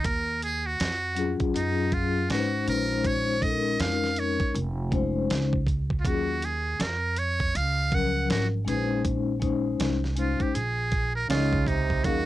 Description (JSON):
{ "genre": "hip hop, jazz-hop", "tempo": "80 BPM", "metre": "4/4", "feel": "swing 61% on 16ths", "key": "unclear", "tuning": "A4 = 442 Hz", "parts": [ { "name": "trumpet with metal mute", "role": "melody", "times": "0.0-12.3 s", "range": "Eb4 to Gb5", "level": "-29 LUFS", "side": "right 2 dB", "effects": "none" }, { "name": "upright bass", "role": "bass", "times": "0.0-12.3 s", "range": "F1 to Gb2", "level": "-29 LUFS", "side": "right 1 dB", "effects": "none" }, { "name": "dusty soul sampler-style drum kit", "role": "drums", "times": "0.0-12.3 s", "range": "hi-hat, kick drum, snare drum", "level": "-29 LUFS", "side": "right 1 dB", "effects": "cassette tape" }, { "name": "vibraphone with soft mallets", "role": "accompaniment", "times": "1.1-12.3 s", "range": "F3 to F5", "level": "-27 LUFS", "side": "left 5 dB", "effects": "cassette tape" }, { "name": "breathy tenor saxophone", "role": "second line", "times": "11.3-12.3 s", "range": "C3 to Eb3", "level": "-30 LUFS", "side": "right 8 dB", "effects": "cassette tape" } ], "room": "moderate booth ambience, RT60 0.2 s", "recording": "home recording on cassette", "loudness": "-24 LUFS", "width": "side -15 dB against mid", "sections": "0.0-12.0 A section", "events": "muted trumpet solo 0.0-12.0", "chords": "0.0 Ebm11; 2.7 Bbm11; 6.0 Ebm11; 8.7 Bbm11" }